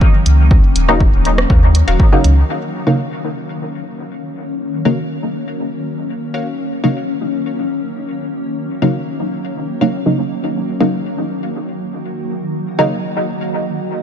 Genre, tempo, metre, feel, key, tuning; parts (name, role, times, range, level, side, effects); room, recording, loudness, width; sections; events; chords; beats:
dub techno; 121 BPM; 4/4; straight; Eb minor; A4 = 441 Hz
granular cloud pad; sustained chords; 0.0-14.0 s; Eb3 to Gb4; -22 LUFS; left 1 dB; built-in reverb, sidechain pumping
electronic kick drum; drums; 0.0-2.1 s; -11 LUFS; equal
soft dub sub bass; bass; 0.3-2.4 s; Eb1 to Eb2; -12 LUFS; equal; sidechain pumping
punchy analog drum machine; drums; 0.3-2.3 s; hi-hat, rim click; -24 LUFS; right 1 dB; dub echo
wavetable chord stab; riff; 0.9-12.9 s; Gb4 to F5; -29 LUFS; left 3 dB; sidechain pumping, dub echo
filtered dub chord stab; stabs; 0.9-12.9 s; Db3 to Eb4; -19 LUFS; equal; chorus, phaser, cassette tape, sidechain pumping, dub echo
light reverb; dark, warm production; -14 LUFS; side -9 dB against mid
0.0-2.5 A section; 2.5-14.0 B section
filter sweep on synth stab 2.5-14.0
0.0 Ebm7
0.01 | 0.51 1.00 1.50 2.00 | 2.49 2.99 3.48 3.98 | 4.48 4.97 5.47 5.96 | 6.46 6.96 7.45 7.95 | 8.44 8.94 9.44 9.93 | 10.43 10.92 11.42 11.91 | 12.41 12.91 13.40 13.90